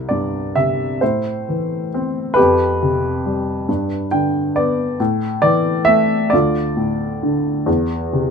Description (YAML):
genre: classical, lyrical solo piano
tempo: 45 BPM (dotted quarters)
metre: 6/8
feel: rubato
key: A minor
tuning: A4 = 440 Hz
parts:
  - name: dark baby grand piano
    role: solo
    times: 0.0-8.3 s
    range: C2 to G5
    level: -16 LUFS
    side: equal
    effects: none
room: light reverb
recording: close, detailed microphones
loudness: -16 LUFS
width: side -6 dB against mid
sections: 0.0-8.3 A section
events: grand piano fill 3.7-5.0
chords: 0.0 C5; 1.0 Am; 2.4 Fsus2; 3.7 G; 5.0 A5; 6.3 Dm; 7.7 Dm9/E